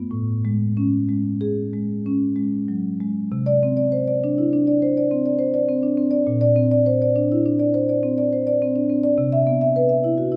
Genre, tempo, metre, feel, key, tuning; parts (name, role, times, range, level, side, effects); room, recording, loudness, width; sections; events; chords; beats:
classical, contemporary piece for solo marimba; 90-106 BPM; 5/4; rubato; A major; A4 = 440 Hz
marimba with soft mallets; solo; 0.0-10.4 s; A2 to E5; -20 LUFS; equal
wet recital hall reverb, RT60 1.5 s; -20 LUFS; mono
0.0-3.3 A section; 3.3-10.4 B section
0.1 Amaj7; 3.3 Csus2; 6.3 Bbadd9; 9.2 Cmaj7
| 0.09 0.75 1.40 2.05 2.68 | 3.31 3.92 4.52 5.10 5.67 | 6.25 6.84 7.44 8.02 8.60 | 9.18 9.76 10.33